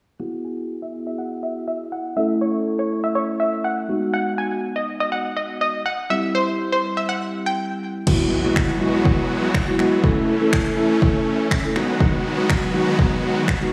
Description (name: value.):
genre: dance-pop.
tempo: 122 BPM.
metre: 4/4.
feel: straight.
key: E major.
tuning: A4 = 440 Hz.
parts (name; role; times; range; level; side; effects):
analog pluck; melody; 0.2-7.6 s; C5 to G#5; -26 LUFS; equal; chorus, low-pass filter, tape echo.
mellow tine electric piano; accompaniment; 0.2-13.7 s; G3 to A4; -25 LUFS; equal; lush chorus, sidechain pumping, low-pass filter.
supersaw chords; sustained chords; 8.1-13.7 s; D#3 to F#4; -27 LUFS; equal; sidechain pumping.
deep house drum kit; drums; 8.1-13.6 s; crash cymbal, finger snaps, kick drum; -23 LUFS; equal; overdrive.
impact; sound effects; 8.1-10.0 s; none; -30 LUFS; equal; none.
room: wet lush hall reverb, RT60 1.6 s, digital ambience.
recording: dreamy mix soaked in reverb, studio ambience.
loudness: -21 LUFS.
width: mono.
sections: 0.2-8.1 A section; 8.1-13.7 B section.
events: filter sweep 0.2-8.1; impact 8.1-10.0.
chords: 0.2 Eadd9; 2.2 A; 3.9 G#m7; 6.1 C; 8.1 Eadd9; 10.0 A; 11.8 G#m7.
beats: | 0.20 0.69 1.19 1.68 | 2.17 2.66 3.15 3.64 | 4.13 4.63 5.12 5.61 | 6.10 6.59 7.09 7.58 | 8.07 8.56 9.05 9.54 | 10.04 10.53 11.02 11.51 | 12.00 12.50 12.99 13.48.